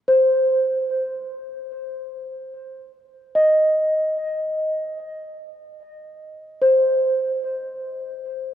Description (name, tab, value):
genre	ambient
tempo	55 BPM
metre	4/4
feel	straight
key	unclear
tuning	A4 = 440 Hz
part	celesta	solo	0.1-8.5 s	C5 to Eb5	-20 LUFS	equal	tape echo
room	wet cathedral reverb, RT60 7.2 s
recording	worn, warbling old tape, cassette tape, warbly pitch drift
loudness	-18 LUFS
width	side -10 dB against mid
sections	0.0-3.4 A section; 3.4-8.5 B section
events	none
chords	none